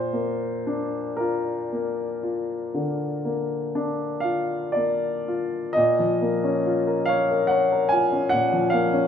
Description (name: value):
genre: classical, romantic nocturne for solo piano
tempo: 37-50 BPM (dotted quarters)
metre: 12/8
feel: rubato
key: Bb major, Bb minor from 5.8 s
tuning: A4 = 440 Hz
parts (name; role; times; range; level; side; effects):
- warm baby grand piano; solo; 0.0-9.1 s; Bb2 to Ab5; -21 LUFS; left 1 dB; none
room: light reverb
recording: minimal, uncompressed stereo recording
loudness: -22 LUFS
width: side -8 dB against mid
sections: 0.0-5.8 A section; 5.8-9.1 B section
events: none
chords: 0.0 Bb; 5.8 Bbm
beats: 1.20 2.75 4.25 | 5.77 7.09 8.33